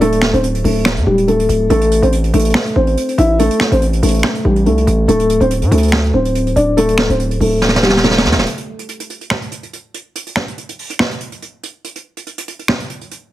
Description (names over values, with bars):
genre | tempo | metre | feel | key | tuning
hip hop, trap | 142 BPM | 4/4 | half-time | unclear | A4 = 440 Hz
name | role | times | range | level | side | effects
felt-muted upright piano | melody | 0.0-8.4 s | G3 to E5 | -14 LUFS | left 1 dB | low-pass filter, plate reverb
distorted 808-style bass | bass | 0.0-8.5 s | D1 to A2 | -16 LUFS | equal | distortion
vintage brush drum kit | drums | 0.0-13.2 s | finger snaps, hi-hat, snare drum | -18 LUFS | right 1 dB | none
room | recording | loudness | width
light reverb | heavily compressed radio sound | -12 LUFS | side -14 dB against mid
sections
0.0-8.5 A section; 8.5-13.3 B section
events
drum fill 7.6-8.5; break 8.5-13.3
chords
0.0 D5; 1.7 Am; 5.1 D7(no3); 8.5 N.C.